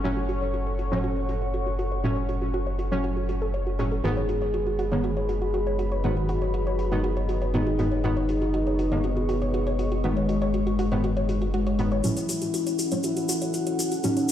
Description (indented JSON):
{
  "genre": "melodic techno",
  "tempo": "120 BPM",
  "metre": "4/4",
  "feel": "straight",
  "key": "F# dorian",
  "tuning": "A4 = 440 Hz",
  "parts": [
    { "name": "dark analog pad", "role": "sustained chords", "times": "0.0-14.3 s", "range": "C#4 to C#6", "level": "-32 LUFS", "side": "equal", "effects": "chorus" },
    { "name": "soft round pluck", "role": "arpeggios", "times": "0.0-14.3 s", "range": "F#4 to C#5", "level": "-32 LUFS", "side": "equal", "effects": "chorus, tape echo" },
    { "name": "synth brass stab", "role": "stabs", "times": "0.0-14.3 s", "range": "G#2 to C#4", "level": "-30 LUFS", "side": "right 1 dB", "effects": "chorus, cassette tape, tape echo" },
    { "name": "round analog bass", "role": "bass", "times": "0.0-12.0 s", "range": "F#1", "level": "-29 LUFS", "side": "equal", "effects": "none" },
    { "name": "electronic hi-hat", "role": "drums", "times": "0.0-14.3 s", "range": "none", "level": "-39 LUFS", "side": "right 3 dB", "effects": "low-pass filter on hats, low-pass filter on room" },
    { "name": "soft octave-layered synth lead", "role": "melody", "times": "4.0-14.3 s", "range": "G#3 to G#4", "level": "-28 LUFS", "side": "left 2 dB", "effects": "chorus, tape echo" },
    { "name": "tube shaker", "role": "percussion", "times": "12.0-14.3 s", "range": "none", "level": "-34 LUFS", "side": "left 4 dB", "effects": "none" }
  ],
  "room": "digital ambience",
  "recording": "played on a big sound system in a bare room, stone room reverb",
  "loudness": "-23 LUFS",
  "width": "side -10 dB against mid",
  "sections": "0.0-12.0 A section; 12.0-14.3 B section",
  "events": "filter sweep on synth arpeggio sound 0.0-12.0; build-up 12.0-14.3",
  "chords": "0.0 F#m; 4.0 G#m/F#; 12.0 F#m"
}